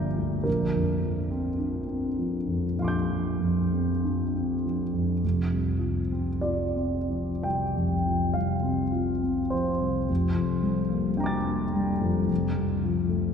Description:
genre	classical, impressionist solo piano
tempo	42-55 BPM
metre	4/4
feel	rubato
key	F major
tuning	A4 = 440 Hz
part	warm concert grand piano	solo	0.0-13.3 s	F1 to A6	-24 LUFS	equal	none
room	wet cathedral reverb, RT60 4.4 s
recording	minimal, uncompressed stereo recording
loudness	-24 LUFS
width	side -7 dB against mid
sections	0.0-13.3 A section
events	none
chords	0.5 Bb69; 5.2 F5; 10.1 Gm11/F; 12.3 Dm7/F (rootless)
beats	| 0.47 1.61 2.78 4.03 | 5.24 6.43 7.77 8.96 | 10.10 11.21 12.31

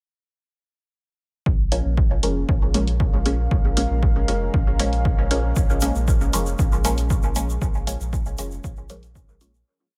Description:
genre	dub techno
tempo	117 BPM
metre	4/4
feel	straight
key	Bb minor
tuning	A4 = 441 Hz
part	deep dark ambient pad	sustained chords	2.7-9.6 s	Ab3 to F5	-34 LUFS	equal	chorus, built-in reverb, sidechain pumping
part	warm sub bass	bass	1.5-9.6 s	F1 to Bb1	-26 LUFS	equal	sidechain pumping
part	electronic kick drum	drums	1.5-9.3 s	none	-24 LUFS	equal	small room ambience
part	filtered dub chord stab	stabs	1.7-9.5 s	F3 to Db4	-30 LUFS	equal	phaser, sidechain pumping, dub echo
part	electronic hi-hat	drums	1.7-9.5 s	none	-32 LUFS	equal	small room ambience
part	egg shaker	percussion	5.6-9.6 s	none	-36 LUFS	equal	none
room	little or no reverb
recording	none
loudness	-21 LUFS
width	mono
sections	1.5-9.7 groove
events	fade-out 6.9-9.7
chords	1.5 Bbm7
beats	| 1.46 1.98 2.49 3.00 | 3.51 4.03 4.54 5.05 | 5.56 6.08 6.59 7.10 | 7.62 8.13 8.64 9.15

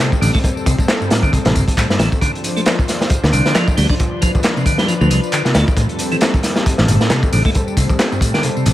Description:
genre	breakbeat, breaks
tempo	135 BPM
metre	4/4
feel	swing 56% on 16ths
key	D dorian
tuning	A4 = 441 Hz
part	lush unison pad	sustained chords	0.0-8.7 s	F3 to C5	-22 LUFS	left 1 dB	chorus, sidechain pumping
part	tonewheel organ	riff	0.0-8.7 s	G2 to D4	-20 LUFS	equal	overdrive, stopped rotary speaker, tube saturation, ping-pong delay
part	crunchy breakbeat drum kit	drums	0.0-8.7 s	hi-hat, kick drum, snare drum	-16 LUFS	equal	none
part	punchy analog drum machine	drums	0.0-8.7 s	handclaps, hi-hat, tambourine	-25 LUFS	equal	none
part	picked electric bass	bass	0.2-8.7 s	G1 to D2	-15 LUFS	equal	none
room	light reverb, small room reverb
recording	vinyl crackle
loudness	-13 LUFS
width	side -14 dB against mid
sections	0.0-8.7 A section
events	none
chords	0.0 Am7; 2.2 Dm7; 5.8 Am7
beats	0.00 | 0.44 0.89 1.33 1.77 | 2.22 2.66 3.11 3.55 | 4.00 4.44 4.88 5.33 | 5.77 6.22 6.66 7.11 | 7.55 8.00 8.44

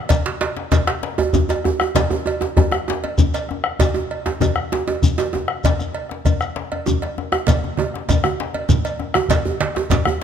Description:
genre	west african traditional, West African drum ensemble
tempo	131 BPM (dotted quarters)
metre	12/8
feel	straight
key	none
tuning	none
part	bombo	percussion	0.1-10.2 s	none	-21 LUFS	equal	none
part	cowbell	percussion	0.1-10.0 s	none	-27 LUFS	right 4 dB	none
part	djembe	percussion	0.1-10.1 s	none	-23 LUFS	left 8 dB	none
part	shekere	percussion	0.1-10.0 s	none	-29 LUFS	left 3 dB	none
part	djembe	percussion	0.3-10.2 s	none	-23 LUFS	right 6 dB	none
part	congas	percussion	7.5-10.2 s	none	-25 LUFS	right 7 dB	none
room	light reverb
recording	close, detailed microphones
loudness	-17 LUFS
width	side -8 dB against mid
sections	0.1-10.2 A section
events	none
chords	none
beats	| 0.10 0.57 1.03 1.49 | 1.96 2.42 2.88 3.34 | 3.80 4.26 4.72 5.18 | 5.64 6.10 6.56 7.02 | 7.47 7.93 8.39 8.85 | 9.30 9.76

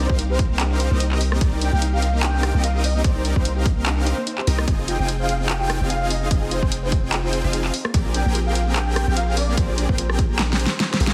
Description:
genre	future bass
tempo	147 BPM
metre	4/4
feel	swing 55% on 16ths, half-time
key	C minor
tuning	A4 = 441 Hz
part	breathy flute-like synth lead	melody	0.0-11.0 s	C5 to G5	-31 LUFS	equal	ensemble chorus, sidechain pumping, tape echo
part	thumb-piano-like synth pluck	arpeggios	0.0-11.1 s	Bb3 to C5	-34 LUFS	equal	chorus, sidechain pumping, tape echo
part	dense compressed supersaw	riff	0.0-11.1 s	C4 to G5	-30 LUFS	equal	sidechain pumping
part	long sustained 808-style bass	bass	0.0-11.1 s	F1 to C2	-24 LUFS	equal	sidechain pumping
part	electronic kick drum	drums	0.1-10.3 s	none	-23 LUFS	equal	none
part	pop drum kit	drums	0.2-11.1 s	handclaps, hi-hat, rim click, snare drum	-28 LUFS	equal	none
room	light reverb, digital ambience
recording	heavily compressed radio sound, multiband compression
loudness	-21 LUFS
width	mono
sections	0.0-11.1 A section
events	drum fill 10.4-11.1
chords	0.0 Cm9; 4.7 Fm7; 7.7 Bb13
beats	0.19 0.59 1.00 | 1.41 1.82 2.23 2.64 | 3.04 3.45 3.86 4.27 | 4.68 5.08 5.49 5.90 | 6.31 6.72 7.13 7.53 | 7.94 8.35 8.76 9.17 | 9.57 9.98 10.39 10.80

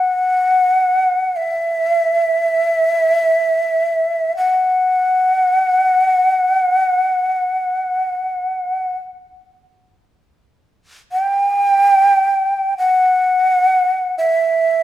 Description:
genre	japanese traditional, Japanese chamber music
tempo	free time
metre	none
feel	none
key	unclear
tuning	A4 = 440 Hz
part	breathy hollow shakuhachi	solo	0.0-14.8 s	E5 to G5	-14 LUFS	equal	none
room	moderate recital hall reverb, RT60 1.5 s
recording	minimal, uncompressed stereo recording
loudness	-14 LUFS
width	side -13 dB against mid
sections	0.0-14.8 A section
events	none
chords	none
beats	free time

